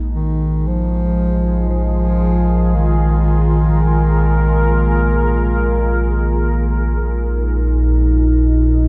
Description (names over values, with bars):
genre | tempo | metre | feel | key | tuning
dark ambient drone | free time | none | none | unclear | A4 = 441 Hz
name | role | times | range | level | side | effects
deep dark ambient pad | sustained chords | 0.0-8.9 s | Ab3 to Db5 | -23 LUFS | equal | chorus, built-in reverb
deep rumbling drone | drone | 0.0-8.9 s | Bb1 to Bb3 | -18 LUFS | equal | built-in reverb, lush chorus
quartz singing bowl | texture | 0.0-7.0 s | none | barely audible | none | none
mellow bass clarinet | melody | 0.1-5.9 s | Eb3 to F3 | -22 LUFS | equal | diffuse ambient delay
room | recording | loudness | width
moderate huge ambient reverb, RT60 7.3 s | dark, warm production | -16 LUFS | mono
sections
0.0-7.0 A section; 7.0-8.9 B section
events
filter sweep on synth drone 0.0-7.0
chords
0.0 Absus2/Bb; 7.0 Bbm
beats
free time